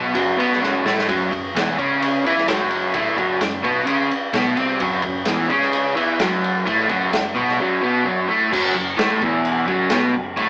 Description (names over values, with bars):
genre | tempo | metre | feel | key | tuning
garage rock duo or trio | 129 BPM | 4/4 | straight | F# minor | A4 = 440 Hz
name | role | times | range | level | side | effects
crunchy overdriven guitar | riff | 0.0-10.5 s | E2 to E4 | -18 LUFS | equal | none
growling picked electric bass | bass | 0.0-10.5 s | E1 to E2 | -32 LUFS | equal | overdrive, tube saturation
crunchy breakbeat drum kit | drums | 0.1-10.5 s | crash cymbal, kick drum, ride cymbal, snare drum | -22 LUFS | equal | none
room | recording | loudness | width
moderate studio reverb, RT60 1.0 s | band playing live in one room, AM radio sound | -17 LUFS | side -30 dB against mid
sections
0.0-8.5 A section; 8.5-10.5 B section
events
drum fill 0.6-1.1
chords
0.0 F#m